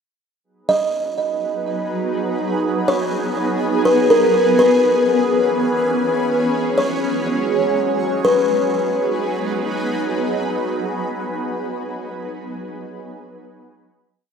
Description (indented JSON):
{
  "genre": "hip hop",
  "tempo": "free time",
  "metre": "none",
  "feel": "none",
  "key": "G# minor",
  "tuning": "A4 = 439 Hz",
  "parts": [
    { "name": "shimmering ambient pad", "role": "sustained chords", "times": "1.3-11.4 s", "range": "E3 to C#5", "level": "-20 LUFS", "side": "right 1 dB", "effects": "chorus, built-in reverb, phaser" },
    { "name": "buzzing kalimba", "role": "melody", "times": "0.7-9.7 s", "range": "A#4 to D#5", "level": "-18 LUFS", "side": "left 2 dB", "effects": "digital delay" }
  ],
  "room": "wet lush hall reverb, RT60 2.3 s",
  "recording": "rough home demo mix",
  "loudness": "-16 LUFS",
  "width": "side -6 dB against mid",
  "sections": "0.4-8.2 verse; 8.2-12.1 final chord",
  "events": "none",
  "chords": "0.4 G#m7; 4.3 C#m7; 6.3 F#sus2; 8.2 G#m7"
}